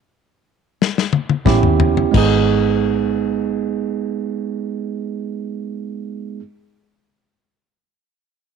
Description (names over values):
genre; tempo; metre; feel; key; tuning
straight-eighth soul blues; 86-98 BPM; 4/4; straight; G# minor; A4 = 441 Hz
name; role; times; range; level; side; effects
warm soul drum kit; drums; 0.8-2.3 s; crash cymbal, kick drum, snare drum, toms; -19 LUFS; left 7 dB; none
bright tine electric piano; accompaniment; 1.5-6.4 s; G#3 to G#4; -19 LUFS; right 10 dB; none
vintage muted fingered electric bass; bass; 1.5-6.4 s; G#1 to D#2; -19 LUFS; left 2 dB; none
room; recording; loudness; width
light reverb; 1960s-style stereo with parts hard left and right; -16 LUFS; side -6 dB against mid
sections
0.0-2.1 A section; 2.1-4.9 B section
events
slowing down 0.0-2.1; stop 0.0-1.5; drum fill 0.8-2.1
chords
0.0 N.C.; 1.5 A7; 2.1 G#m